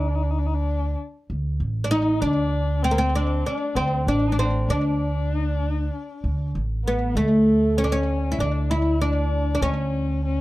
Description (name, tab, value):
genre	persian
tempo	97 BPM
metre	4/4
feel	straight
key	unclear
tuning	A4 = 435 Hz
part	oud	melody	0.0-10.4 s	A3 to E4	-23 LUFS	equal	slapback echo
part	dark kamancheh	second line	0.0-10.4 s	A3 to E4	-29 LUFS	left 5 dB	none
part	upright bass	bass	0.0-10.4 s	A1 to D2	-24 LUFS	right 1 dB	none
room	light reverb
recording	dark, warm production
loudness	-20 LUFS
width	side -17 dB against mid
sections	0.0-7.2 A section; 7.2-10.4 B section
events	none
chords	none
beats	0.37 0.99 1.60 | 2.22 2.84 3.46 4.08 | 4.69 5.31 5.93 6.54 | 7.16 7.78 8.39 9.01 | 9.62 10.24